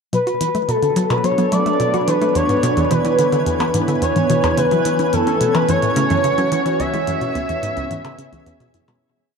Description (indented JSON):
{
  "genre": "ambient, sequencer-driven space music",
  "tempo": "108 BPM",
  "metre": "4/4",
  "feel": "straight",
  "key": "unclear",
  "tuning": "A4 = 439 Hz",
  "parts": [
    { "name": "expressive portamento lead", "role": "melody", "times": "0.1-8.7 s", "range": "A4 to E5", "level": "-19 LUFS", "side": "equal", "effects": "lush chorus, cassette tape, ping-pong delay" },
    { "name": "lush unison pad", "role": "sustained chords", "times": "0.9-9.0 s", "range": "E3 to G#5", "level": "-21 LUFS", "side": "right 1 dB", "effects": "chorus" },
    { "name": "warbly dusty pluck", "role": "arpeggios", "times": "0.1-9.0 s", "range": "E3 to E4", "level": "-25 LUFS", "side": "moving between left 6 dB and right 2 dB", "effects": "chorus, auto-pan, ping-pong delay" },
    { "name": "hollow square pluck", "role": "riff", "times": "0.1-9.0 s", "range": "C#2 to F#4", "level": "-23 LUFS", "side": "equal", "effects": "chorus, ping-pong delay" },
    { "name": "electronic hi-hat and percussion blips", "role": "percussion", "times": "0.1-9.0 s", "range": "none", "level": "-29 LUFS", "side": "left 2 dB", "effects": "ping-pong delay" },
    { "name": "twinkling granular texture", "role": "texture", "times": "1.5-9.0 s", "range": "G#5", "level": "-35 LUFS", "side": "right 1 dB", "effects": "built-in reverb" }
  ],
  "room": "wet huge ambient reverb, RT60 7.0 s",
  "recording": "cassette tape",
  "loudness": "-15 LUFS",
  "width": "side -5 dB against mid",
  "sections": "0.1-9.0 A section",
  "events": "fade-in on synth texture 0.1-9.0; fade-out 6.1-9.0",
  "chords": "0.1 Bm7; 2.4 E7; 4.6 F#m7; 6.8 C#m7",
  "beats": "| 0.13 0.69 1.24 1.80 | 2.35 2.91 3.46 4.02 | 4.58 5.13 5.69 6.24 | 6.80 7.35 7.91 8.46"
}